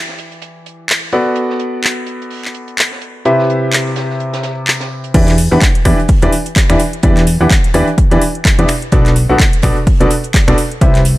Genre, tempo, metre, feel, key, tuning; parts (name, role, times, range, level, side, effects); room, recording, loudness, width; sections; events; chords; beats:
piano house; 127 BPM; 4/4; swing 57% on 16ths; E minor; A4 = 444 Hz
bright grand piano; riff; 0.0-11.0 s; B2 to F#5; -16 LUFS; equal; sidechain pumping, dub echo
compact cocktail drum kit; drums; 0.1-11.2 s; hi-hat, snare drum; -30 LUFS; right 4 dB; sidechain pumping on hats, high-pass filter on hats, low-pass filter on hats, high-pass filter on snare, low-pass filter on snare, high-pass filter on room, low-pass filter on room
house drum kit; drums; 0.9-11.2 s; crash cymbal, finger snaps, handclaps, hi-hat; -17 LUFS; equal; overdrive
plucky analog bass; bass; 5.1-11.2 s; B1 to E2; -13 LUFS; equal; sidechain pumping
electronic kick drum; drums; 5.1-10.9 s; -12 LUFS; equal; overdrive
small room ambience; -10 LUFS; side -17 dB against mid
0.0-5.1 A section; 5.1-11.2 B section
drop 5.1-11.2
0.0 Em7; 1.1 Bm7; 3.3 Cmaj7; 5.1 Em7; 8.7 Bm7
0.42 0.89 | 1.36 1.84 2.31 2.78 | 3.25 3.73 4.20 4.67 | 5.14 5.62 6.09 6.56 | 7.03 7.51 7.98 8.45 | 8.92 9.40 9.87 10.34 | 10.81